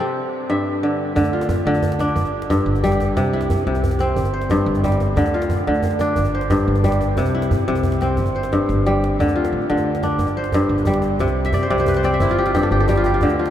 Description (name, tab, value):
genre	west african traditional, West African string and xylophone music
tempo	119 BPM (dotted quarters)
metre	12/8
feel	straight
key	unclear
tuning	A4 = 439 Hz
part	kora	arpeggios	0.0-13.5 s	G2 to E5	-18 LUFS	left 1 dB	none
part	upright bass	bass	1.2-13.5 s	G1 to G2	-23 LUFS	right 1 dB	none
part	djembe	percussion	1.2-13.5 s	none	-25 LUFS	right 2 dB	none
room	moderate huge ambient reverb, RT60 7.6 s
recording	in a vast, echoing space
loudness	-16 LUFS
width	side -11 dB against mid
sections	0.0-1.2 A section; 1.2-13.5 B section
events	drum fill 8.5-9.2; kora fill 11.4-13.2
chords	0.2 G5; 1.2 Dm; 2.2 N.C.; 3.2 C; 4.2 Gsus4; 5.2 Dm; 6.2 Gsus4; 7.2 C; 8.2 Gsus4; 9.2 Dm; 10.2 Gsus4; 11.2 C5; 12.2 Fmaj9/G